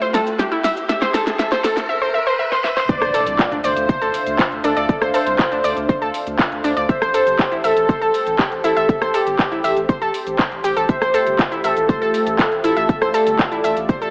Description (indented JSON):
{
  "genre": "progressive house",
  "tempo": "120 BPM",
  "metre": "4/4",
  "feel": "straight",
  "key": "unclear",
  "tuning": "A4 = 440 Hz",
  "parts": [
    { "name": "warm analog pad", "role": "sustained chords", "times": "0.0-14.1 s", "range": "A3 to A5", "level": "-29 LUFS", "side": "equal", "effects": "chorus, sidechain pumping" },
    { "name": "analog pluck", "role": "arpeggios", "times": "0.0-14.1 s", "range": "D4 to E5", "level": "-24 LUFS", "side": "equal", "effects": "chorus, sidechain pumping, tape echo" },
    { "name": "pop drum kit", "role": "drums", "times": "0.0-14.1 s", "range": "handclaps, hi-hat, rim click, shaker, snare drum", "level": "-26 LUFS", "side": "equal", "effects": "sidechain pumping on hats, sidechain pumping on perc" },
    { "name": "riser and impact", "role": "sound effects", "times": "0.0-4.9 s", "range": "none", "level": "-30 LUFS", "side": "equal", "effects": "none" },
    { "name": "expressive portamento lead", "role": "melody", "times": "2.9-13.8 s", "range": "G4 to D5", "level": "-23 LUFS", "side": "equal", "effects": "analog chorus, cassette tape, sidechain pumping, tape echo" },
    { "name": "airy dreamy lead", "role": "second line", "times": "2.9-13.8 s", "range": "G4 to D5", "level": "-28 LUFS", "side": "equal", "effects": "none" },
    { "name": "electronic kick drum", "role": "drums", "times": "2.9-14.0 s", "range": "none", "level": "-20 LUFS", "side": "equal", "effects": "none" },
    { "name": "saturated sub bass", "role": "bass", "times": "3.0-14.1 s", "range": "G1 to D2", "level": "-37 LUFS", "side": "equal", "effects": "sidechain pumping" }
  ],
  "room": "moderate lush hall reverb, RT60 2.0 s",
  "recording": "high-pass filter, AM radio sound",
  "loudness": "-18 LUFS",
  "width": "mono",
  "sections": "0.0-2.9 A section; 2.9-14.1 B section",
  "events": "build-up 0.0-2.9; drum fill 0.0-1.9, 2.5-2.9; riser 0.0-2.9; drop 2.9-14.1; impact 2.9-4.9",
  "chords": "0.0 Am7; 2.9 Dm7; 6.9 Am7; 10.9 Fmaj7"
}